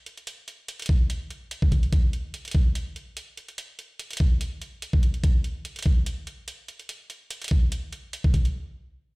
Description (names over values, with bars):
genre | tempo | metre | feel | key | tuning
heavy wobble dubstep | 145 BPM | 4/4 | swing 54% on 16ths, half-time | none | none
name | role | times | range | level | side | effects
electronic hi-hat | drums | 0.1-8.5 s | none | -37 LUFS | right 2 dB | none
electronic kick drum | drums | 0.9-8.4 s | none | -20 LUFS | equal | overdrive
room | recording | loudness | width
small room ambience | played on a big sound system in a bare room, stone room reverb | -22 LUFS | side -26 dB against mid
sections
0.0-8.5 A section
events
none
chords
none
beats
| 0.27 0.68 1.10 1.51 | 1.93 2.34 2.75 3.17 | 3.58 3.99 4.41 4.82 | 5.24 5.65 6.06 6.48 | 6.89 7.30 7.72 8.13